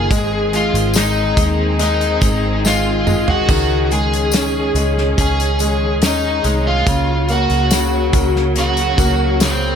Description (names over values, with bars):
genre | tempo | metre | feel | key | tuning
pop ballad | 71 BPM | 4/4 | straight | Db major | A4 = 440 Hz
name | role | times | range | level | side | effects
lead guitar through a small cranked amp | melody | 0.0-9.8 s | C4 to Ab5 | -18 LUFS | left 1 dB | overdrive
clear concert grand piano | accompaniment | 0.0-9.8 s | Db3 to Db4 | -22 LUFS | left 1 dB | none
warm studio string section | sustained chords | 0.0-9.8 s | Db3 to Ab4 | -24 LUFS | left 1 dB | none
vintage muted fingered electric bass | bass | 0.0-9.8 s | Gb1 to Eb2 | -20 LUFS | right 1 dB | none
loose indie drum kit | drums | 0.1-9.6 s | hi-hat, kick drum, snare drum, splash cymbal, toms | -19 LUFS | equal | none
tambourine | percussion | 0.1-9.6 s | none | -29 LUFS | left 6 dB | none
room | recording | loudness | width
studio reverb | none | -13 LUFS | side -7 dB against mid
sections
0.0-9.8 A section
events
drum fill 2.6-3.5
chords
0.1 Ab; 3.5 Dbsus2; 6.9 Gb/Db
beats
| 0.11 0.95 1.80 2.64 | 3.49 4.33 5.18 6.02 | 6.87 7.71 8.56 9.40